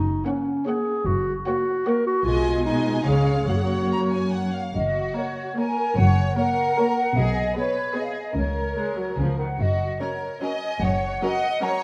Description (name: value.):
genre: cinematic, playful, whimsical film cue.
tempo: 148 BPM.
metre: 3/4.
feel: straight.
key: F# major.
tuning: A4 = 444 Hz.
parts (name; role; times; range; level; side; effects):
mellow clarinet; second line; 0.0-4.3 s; C#4 to A#4; -26 LUFS; equal; none.
rich studio cello section; bass; 0.0-11.1 s; F#2 to C#3; -29 LUFS; equal; none.
warm studio double bass section; bass; 0.0-11.1 s; F#1 to C#2; -28 LUFS; equal; none.
rich studio violin section; melody; 0.3-11.7 s; G#4 to A#5; -37 LUFS; equal; none.
warm studio violin section; second line; 0.3-11.8 s; F#4 to D#5; -33 LUFS; equal; none.
warm studio viola section; accompaniment; 0.3-11.7 s; D#3 to A#4; -32 LUFS; equal; none.
mellow flute section; second line; 4.5-11.8 s; C#5 to A#5; -29 LUFS; equal; none.
room: wet scoring stage reverb, RT60 1.5 s.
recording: dark, warm production.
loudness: -24 LUFS.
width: mono.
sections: 0.0-4.7 A section; 4.7-11.8 A section.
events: none.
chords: 0.0 F#; 2.3 G#m/B; 3.1 C#; 3.5 F#; 7.2 G#m/B; 8.4 F#/C#; 9.2 C#; 9.6 F#.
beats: 0.27 0.67 | 1.07 1.47 1.87 | 2.26 2.66 3.07 | 3.48 3.91 4.33 | 4.75 5.16 5.56 | 5.96 6.37 6.77 | 7.17 7.56 7.96 | 8.36 8.77 9.19 | 9.60 10.01 10.42 | 10.82 11.23 11.62.